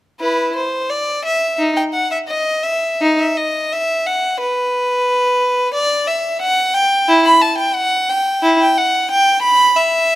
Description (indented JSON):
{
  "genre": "classical, baroque-style suite movement for unaccompanied violin",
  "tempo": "89 BPM",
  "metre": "4/4",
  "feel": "rubato",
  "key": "E minor",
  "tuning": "A4 = 440 Hz",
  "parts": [
    { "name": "clear violin", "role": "solo", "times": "0.2-10.2 s", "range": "D#4 to B5", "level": "-13 LUFS", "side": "equal", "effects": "none" }
  ],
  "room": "moderate recital hall reverb, RT60 1.4 s",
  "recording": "close, detailed microphones",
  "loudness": "-13 LUFS",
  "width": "side -15 dB against mid",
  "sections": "0.2-10.2 A section",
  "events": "none",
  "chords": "none",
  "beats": "| 0.20 0.90 1.59 2.28 | 3.00 3.71 4.39 5.07 | 5.74 6.41 7.08 7.75 | 8.43 9.09 9.76"
}